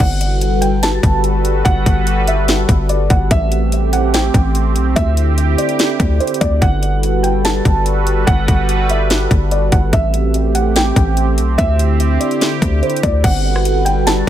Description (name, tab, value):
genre	hip hop, atmospheric cloud-rap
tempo	145 BPM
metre	4/4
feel	half-time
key	G major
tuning	A4 = 440 Hz
part	felt-muted upright piano	melody	0.0-14.3 s	C5 to A5	-20 LUFS	right 1 dB	ping-pong delay
part	sweeping resonant pad	sustained chords	0.0-14.3 s	D3 to B4	-19 LUFS	right 2 dB	chorus, sidechain pumping
part	warm 808-style bass	bass	0.0-14.2 s	G1 to D2	-16 LUFS	equal	none
part	trap drum kit	drums	0.0-14.2 s	crash cymbal, hi-hat, kick drum, rim click, snare drum	-16 LUFS	equal	overdrive
room	little or no reverb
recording	none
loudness	-12 LUFS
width	side -11 dB against mid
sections	0.0-13.2 A section; 13.2-14.3 B section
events	none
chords	0.0 Gmaj9; 3.3 Am7; 5.0 D9sus4; 6.6 Gmaj9; 9.9 Am7; 11.6 D9sus4; 13.2 Gmaj9